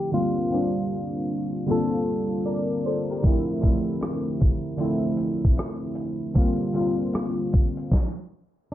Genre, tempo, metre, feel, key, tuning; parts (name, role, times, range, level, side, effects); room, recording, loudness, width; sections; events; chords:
lo-fi hip hop; 77 BPM; 4/4; swing 63% on 16ths; A4 = 440 Hz
flamenco guitar; melody; 0.0-2.8, 8.7 s; F4 to A4; -29 LUFS; equal
warbly lo-fi synth keys; accompaniment; 0.0-7.9 s; D3 to D5; -24 LUFS; equal; chorus, cassette tape
dusty soul sampler-style drum kit; drums; 3.2-8.2 s; hi-hat, kick drum, rim click, snare drum; -22 LUFS; equal; vintage 12-bit sampler grit
moderate studio reverb, RT60 0.6 s; cassette tape, low-pass filter; -22 LUFS; side -13 dB against mid
0.0-8.7 A section
filter sweep 0.0-8.7; stop 7.9-8.7
0.1 C9sus4; 3.2 Dm9; 6.4 C9sus4